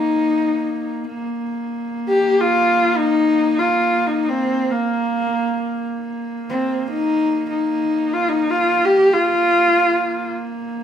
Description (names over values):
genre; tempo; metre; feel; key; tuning
mongolian traditional, Mongolian folk; free time; none; none; Bb zhi mode; A4 = 440 Hz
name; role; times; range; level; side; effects
clear horsehead fiddle; melody; 0.0-10.3 s; Bb3 to G4; -16 LUFS; left 1 dB; none
clear horsehead fiddle; drone; 0.0-10.8 s; Bb3; -26 LUFS; right 2 dB; none
room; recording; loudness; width
moderate large studio reverb, RT60 1.2 s; band playing live in one room; -16 LUFS; side -9 dB against mid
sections
0.0-10.8 A section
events
none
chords
none